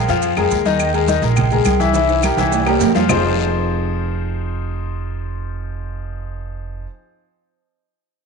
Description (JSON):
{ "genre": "latin, salsa", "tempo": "209 BPM", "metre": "4/4", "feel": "straight", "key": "F minor", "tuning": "A4 = 440 Hz", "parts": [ { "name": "bright grand piano", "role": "accompaniment", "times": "0.0-6.8 s", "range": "Eb3 to F5", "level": "-19 LUFS", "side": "left 9 dB", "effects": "none" }, { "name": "upright bass", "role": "bass", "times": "0.0-6.8 s", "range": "F1 to F2", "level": "-22 LUFS", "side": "right 3 dB", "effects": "none" }, { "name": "agogo bells and timbales", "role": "percussion", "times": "0.1-3.2 s", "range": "none", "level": "-21 LUFS", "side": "right 14 dB", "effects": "none" }, { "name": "congas", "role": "percussion", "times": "0.1-3.2 s", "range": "none", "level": "-24 LUFS", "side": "right 2 dB", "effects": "none" }, { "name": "guiro", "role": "percussion", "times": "0.1-3.2 s", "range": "none", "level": "-33 LUFS", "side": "left 10 dB", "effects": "none" }, { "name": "maracas", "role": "percussion", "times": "0.1-3.2 s", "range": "none", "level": "-32 LUFS", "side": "right 17 dB", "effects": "none" }, { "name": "claves", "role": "percussion", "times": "0.4-3.2 s", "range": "none", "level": "-28 LUFS", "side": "left 9 dB", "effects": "none" } ], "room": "moderate echo chamber reverb, RT60 1.7 s, small room ambience", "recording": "1960s-style stereo with parts hard left and right, nothing above 10.7 kHz", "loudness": "-15 LUFS", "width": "side -5 dB against mid", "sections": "0.0-3.1 A section; 3.1-5.4 B section", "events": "drum fill 1.9-3.1", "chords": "0.0 Bb5; 0.8 Ebsus4; 1.9 C7; 3.1 Fm7" }